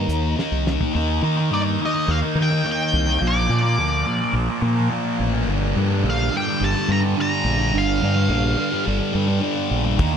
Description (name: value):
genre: psychedelic rock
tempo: 106 BPM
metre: 4/4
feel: straight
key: G minor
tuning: A4 = 440 Hz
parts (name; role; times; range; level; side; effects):
- octave-fuzz lead guitar; melody; 0.0-8.8 s; Bb4 to Bb5; -25 LUFS; left 2 dB; wah, distortion, analog delay
- thick fuzz guitar; riff; 0.0-10.2 s; G2 to Eb4; -22 LUFS; right 1 dB; distortion, phaser, analog delay
- growling fingered electric bass; bass; 0.0-10.2 s; G1 to Eb3; -21 LUFS; equal; overdrive
- cloth-damped thuddy drum kit; drums; 0.1-0.9, 10.0-10.1 s; hi-hat, kick drum, ride cymbal, snare drum, toms; -24 LUFS; equal; analog delay
room: little or no reverb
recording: echo-heavy mix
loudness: -18 LUFS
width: side -8 dB against mid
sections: 1.0-10.2 A section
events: drum fill 0.4-1.0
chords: 0.0 Eb5; 1.0 Eb; 3.2 Bb; 5.5 Gm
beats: 0.39 | 0.96 1.52 2.09 2.66 | 3.23 3.79 4.36 4.92 | 5.49 6.05 6.62 7.18 | 7.75 8.31 8.87 9.44 | 10.00